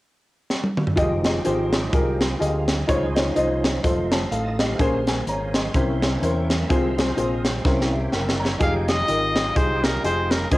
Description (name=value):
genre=uptempo gospel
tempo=126 BPM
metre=4/4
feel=swing 57% on 8ths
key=F minor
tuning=A4 = 440 Hz
part: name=crisp fusion drum kit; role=drums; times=0.5-10.6 s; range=hi-hat, kick drum, snare drum, toms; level=-23 LUFS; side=equal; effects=cassette tape
part: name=warm upright piano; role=accompaniment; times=1.0-10.6 s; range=Bb2 to C6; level=-24 LUFS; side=left 1 dB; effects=cassette tape
part: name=overdriven tonewheel organ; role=sustained chords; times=1.0-10.6 s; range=E3 to A5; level=-32 LUFS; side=right 2 dB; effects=slow rotary speaker, chorus vibrato, cassette tape
part: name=fingered electric bass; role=bass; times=1.0-10.6 s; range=F1 to E2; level=-26 LUFS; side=equal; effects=none
part: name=clear trumpet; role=melody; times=8.6-10.6 s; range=Ab4 to F5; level=-24 LUFS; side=left 1 dB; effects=cassette tape
part: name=breathy mellow flute section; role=sustained chords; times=8.6-10.6 s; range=Eb5 to Eb6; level=-38 LUFS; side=left 1 dB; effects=none
room=light reverb, studio reverb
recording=home recording on cassette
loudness=-19 LUFS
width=side -18 dB against mid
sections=1.0-8.6 A section; 8.6-10.6 B section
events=drum fill 0.5-1.0, 7.7-8.6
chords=0.0 N.C.; 1.0 Fm9; 2.9 Dbmaj9; 3.8 F7; 4.8 Bbm9; 5.8 C7b9; 6.7 Fm/C; 7.7 C7b9; 8.6 Fm9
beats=0.02 0.50 | 0.98 1.45 1.93 2.41 | 2.89 3.36 3.84 4.32 | 4.80 5.27 5.75 6.23 | 6.71 7.18 7.66 8.14 | 8.61 9.09 9.57 10.04 | 10.52